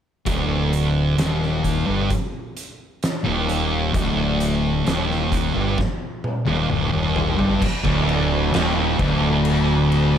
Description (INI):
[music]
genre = stoner and doom metal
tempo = 65 BPM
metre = 4/4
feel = straight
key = unclear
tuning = A4 = 440 Hz
[part]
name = thick fuzz guitar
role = riff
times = 0.3-10.2 s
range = D2 to G2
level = -23 LUFS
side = left 7 dB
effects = distortion
[part]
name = thick fuzz guitar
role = riff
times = 0.3-10.2 s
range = D2 to G2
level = -22 LUFS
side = right 7 dB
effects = distortion
[part]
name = growling fingered electric bass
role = bass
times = 0.3-10.2 s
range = D1 to G1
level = -25 LUFS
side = equal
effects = overdrive
[part]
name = oversized low-tuned drum kit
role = drums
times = 0.3-10.2 s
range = crash cymbal, hi-hat, kick drum, snare drum, toms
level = -25 LUFS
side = equal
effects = none
[part]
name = sludgy distorted guitar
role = riff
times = 7.8-10.2 s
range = D2 to Eb2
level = -25 LUFS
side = right 1 dB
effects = overdrive
[sound]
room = light reverb, studio reverb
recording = none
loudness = -18 LUFS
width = side -9 dB against mid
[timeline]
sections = 0.3-7.6 A section; 7.6-10.2 B section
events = drum fill 5.8-7.6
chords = 0.3 Ebmaj7/D; 7.6 Bbadd11/D (rootless)